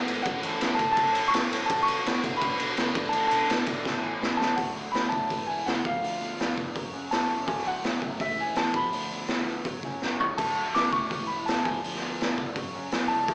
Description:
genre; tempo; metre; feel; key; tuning
indie rock; 166 BPM; 4/4; straight; unclear; A4 = 440 Hz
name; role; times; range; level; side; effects
clear upright piano; melody; 0.0-13.3 s; E5 to D6; -31 LUFS; equal; slapback echo, digital delay
crunchy overdriven guitar; riff; 0.0-13.3 s; E3 to A4; -37 LUFS; equal; phaser, slapback echo
growling picked electric bass; bass; 0.1-13.3 s; E1 to B2; -42 LUFS; equal; overdrive
raw garage drum kit; drums; 0.1-13.3 s; crash cymbal, hi-hat, kick drum, ride cymbal, snare drum, toms; -31 LUFS; equal; none
room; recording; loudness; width
light reverb, small room ambience; live gig heard through the venue's PA, club reverb, small speaker sound; -28 LUFS; mono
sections
0.0-4.6 A section; 4.6-13.3 B section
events
drum fill 3.9-4.6, 10.0-10.4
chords
0.3 F#m; 1.7 Bm; 3.0 Dsus2; 3.9 A; 4.6 Dmaj7; 5.3 E69; 5.8 Dm6; 6.8 F#m; 7.5 Dmaj7; 8.2 Eadd11; 8.8 Dm6; 9.7 F#m; 10.4 Dmaj7; 11.1 Aadd9/E; 11.7 Dm6; 12.6 F#m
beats
| 0.26 0.62 0.98 1.34 | 1.70 2.06 2.42 2.78 | 3.14 3.50 3.86 4.22 | 4.58 4.94 5.30 5.67 | 6.03 6.39 6.75 7.12 | 7.48 7.84 8.21 8.57 | 8.93 9.30 9.66 10.02 | 10.39 10.75 11.11 11.47 | 11.84 12.20 12.56 12.93 | 13.29

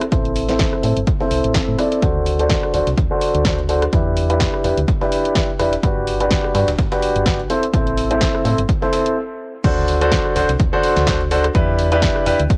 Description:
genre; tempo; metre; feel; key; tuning
piano house; 126 BPM; 4/4; swing 56% on 16ths; D mixolydian; A4 = 440 Hz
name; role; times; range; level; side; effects
house drum kit; drums; 0.0-12.6 s; crash cymbal, hi-hat, rim click, snare drum; -28 LUFS; equal; cassette tape
bright grand piano; riff; 0.1-12.4 s; C4 to E5; -21 LUFS; equal; sidechain pumping, low-pass filter, tape echo
solid FM bass; bass; 0.1-12.5 s; D1 to A2; -24 LUFS; equal; sidechain pumping
breakbeat sampler-style drum kit; drums; 0.1-12.6 s; hi-hat, snare drum; -39 LUFS; equal; none
electronic kick drum; drums; 0.1-12.6 s; none; -23 LUFS; equal; overdrive, cassette tape
room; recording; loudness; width
light reverb; home recording on cassette; -18 LUFS; mono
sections
0.0-9.6 A section; 9.6-12.6 B section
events
stop 9.2-9.6; drop 9.6-12.6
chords
0.0 Am; 2.0 D7; 3.9 Em7; 5.8 Gmaj7; 7.5 Am; 9.6 D7; 11.5 Em7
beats
| 0.12 0.59 1.07 1.55 | 2.02 2.50 2.98 3.45 | 3.93 4.41 4.88 5.36 | 5.83 6.31 6.79 7.26 | 7.74 8.21 8.69 9.17 | 9.64 10.12 10.60 11.07 | 11.55 12.02 12.50

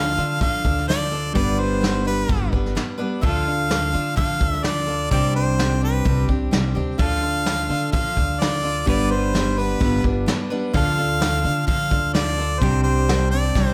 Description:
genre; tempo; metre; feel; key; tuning
folk rock and heartland rock; 128 BPM; 4/4; straight; D dorian; A4 = 439 Hz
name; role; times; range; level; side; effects
bright harmonica; melody; 0.0-13.7 s; B4 to F5; -26 LUFS; equal; none
picked steel-string acoustic guitar; accompaniment; 0.0-13.7 s; G2 to B4; -30 LUFS; equal; none
clean electric guitar; riff; 0.0-13.7 s; C3 to B4; -28 LUFS; equal; none
upright bass; bass; 0.0-13.7 s; G1 to D3; -27 LUFS; equal; none
soft brush drum kit; drums; 0.4-13.7 s; hi-hat, kick drum, snare drum; -26 LUFS; equal; none
room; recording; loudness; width
light reverb; none; -21 LUFS; mono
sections
0.0-13.7 A section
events
drum fill 13.6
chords
0.0 Dm; 1.4 G; 3.2 Dm; 5.1 Csus2; 7.0 Dm; 8.9 G; 10.7 Dm; 12.6 Csus2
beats
0.41 0.88 | 1.35 1.82 2.29 2.76 | 3.23 3.70 4.17 4.64 | 5.11 5.58 6.05 6.52 | 6.99 7.46 7.93 8.40 | 8.87 9.34 9.80 10.27 | 10.74 11.21 11.68 12.15 | 12.62 13.09 13.55

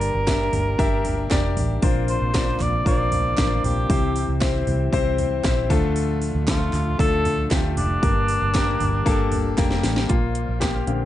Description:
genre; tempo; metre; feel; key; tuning
piano-driven pop; 116 BPM; 4/4; straight; unclear; A4 = 442 Hz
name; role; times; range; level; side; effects
mellow cor anglais; melody; 0.0-9.5 s; D4 to D5; -25 LUFS; right 1 dB; none
clear baby grand piano; accompaniment; 0.0-11.1 s; G2 to E5; -25 LUFS; left 5 dB; none
tonewheel organ; sustained chords; 0.0-11.1 s; A2 to F5; -33 LUFS; right 1 dB; chorus vibrato, slow rotary speaker
vintage muted fingered electric bass; bass; 0.0-11.1 s; F1 to D2; -24 LUFS; equal; none
house drum kit; drums; 0.0-11.0 s; hi-hat, kick drum, snare drum, toms; -24 LUFS; right 1 dB; none
group handclap; percussion; 0.3-10.7 s; none; -37 LUFS; right 4 dB; none
room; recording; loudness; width
light reverb, digital ambience; dark, warm production, nothing above 10.3 kHz; -19 LUFS; side -13 dB against mid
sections
0.0-10.1 A section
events
drum fill 9.6-10.1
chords
0.0 Gm; 1.8 Bbadd9; 3.9 C; 5.7 Dm; 8.0 Gm; 10.1 Bbadd9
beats
0.27 0.79 1.31 | 1.82 2.34 2.86 3.38 | 3.89 4.41 4.93 5.44 | 5.96 6.48 7.00 7.51 | 8.03 8.55 9.06 9.58 | 10.10 10.62

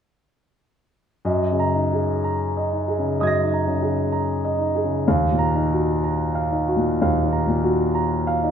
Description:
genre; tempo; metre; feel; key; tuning
classical, impressionist solo piano; 63 BPM; 4/4; rubato; Gb major; A4 = 440 Hz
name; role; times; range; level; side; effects
warm concert grand piano; solo; 1.2-8.5 s; Eb2 to Bb6; -19 LUFS; equal; none
room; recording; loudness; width
wet recital hall reverb, RT60 1.8 s; none; -19 LUFS; side -8 dB against mid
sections
1.2-8.5 A section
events
none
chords
1.2 Gb69; 5.0 Ebmadd9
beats
| 1.25 2.23 3.17 4.10 | 5.05 6.01 6.98 7.93

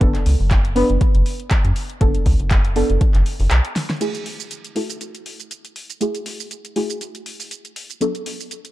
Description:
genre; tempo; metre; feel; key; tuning
deep house; 120 BPM; 4/4; swing 55% on 16ths; F# minor; A4 = 440 Hz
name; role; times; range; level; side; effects
deep mellow chord stab; stabs; 0.0-8.7 s; F#3 to B4; -24 LUFS; equal; chorus, sidechain pumping, tape echo
rubbery square bass; bass; 0.0-3.6 s; F#1 to F#2; -18 LUFS; equal; sidechain pumping
deep house drum kit; drums; 0.0-8.7 s; crash cymbal, handclaps, hi-hat, shaker, snare drum; -28 LUFS; equal; overdrive
electronic kick drum; drums; 0.0-3.1 s; none; -17 LUFS; equal; overdrive
room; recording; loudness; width
digital ambience; dark, warm production; -17 LUFS; side -16 dB against mid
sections
0.0-4.0 A section; 4.0-8.7 B section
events
break 3.5-4.0; drum fill 3.8; filter sweep on synth stab 4.0-8.7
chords
0.0 Bm7/F#; 4.0 F#m9; 8.0 Bm7/F#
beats
| 0.01 0.51 1.01 1.51 | 2.01 2.51 3.01 3.51 | 4.01 4.51 5.01 5.51 | 6.01 6.51 7.01 7.51 | 8.01 8.51

